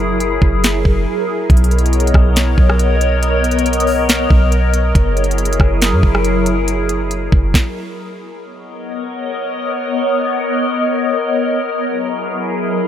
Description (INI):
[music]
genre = hip hop, atmospheric cloud-rap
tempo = 139 BPM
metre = 4/4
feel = half-time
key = B major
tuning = A4 = 440 Hz
[part]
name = glassy FM pad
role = sustained chords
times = 0.0-12.9 s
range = F#3 to D#5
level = -17 LUFS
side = left 1 dB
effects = ensemble chorus, built-in reverb, phaser
[part]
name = soft 808-style bass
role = bass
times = 0.0-7.5 s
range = F#1 to F#2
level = -16 LUFS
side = equal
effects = none
[part]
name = trap drum kit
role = drums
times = 0.2-7.6 s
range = hi-hat, kick drum, rim click, snare drum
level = -14 LUFS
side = equal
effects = none
[sound]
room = light reverb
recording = none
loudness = -13 LUFS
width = side -10 dB against mid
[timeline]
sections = 0.0-8.4 A section; 8.4-12.9 B section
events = break 1.1-1.5; stop 7.5-8.4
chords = 0.0 F#9; 1.5 Bmaj9; 5.0 F#9; 8.4 Bmaj9; 11.9 F#9